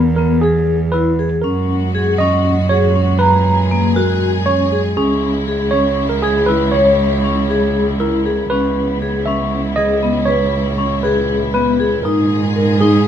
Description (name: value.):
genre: contemporary instrumental, chamber music in an uneven meter.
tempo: 237 BPM (eighths).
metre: 7/8.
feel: straight.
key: C# dorian.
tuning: A4 = 440 Hz.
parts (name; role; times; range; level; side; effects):
tine electric piano; melody; 0.0-13.1 s; G#4 to E5; -19 LUFS; right 3 dB; none.
dark cello; bass; 0.0-13.1 s; C#2 to G#2; -17 LUFS; right 3 dB; none.
vibraphone with medium mallets; arpeggios; 0.2-13.1 s; A#3 to A#5; -18 LUFS; left 4 dB; none.
warm studio string section; sustained chords; 1.5-13.1 s; A#2 to G#4; -24 LUFS; left 3 dB; none.
room: light reverb.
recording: close, detailed microphones.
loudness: -13 LUFS.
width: side -9 dB against mid.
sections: 0.0-8.5 A section; 8.5-13.1 B section.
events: none.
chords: 0.0 E; 1.4 F#add9; 5.0 C#m; 8.5 C#m7; 12.1 G#sus2.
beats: 0.19 0.44 0.69 0.94 1.20 | 1.45 1.70 1.95 2.20 2.46 2.71 2.96 | 3.21 3.46 3.72 3.97 4.22 4.47 4.73 | 4.98 5.23 5.48 5.74 5.99 6.24 6.49 | 6.75 7.00 7.25 7.51 7.76 8.01 8.27 | 8.52 8.77 9.03 9.28 9.53 9.78 10.04 | 10.29 10.54 10.80 11.05 11.30 11.56 11.81 | 12.06 12.32 12.57 12.82.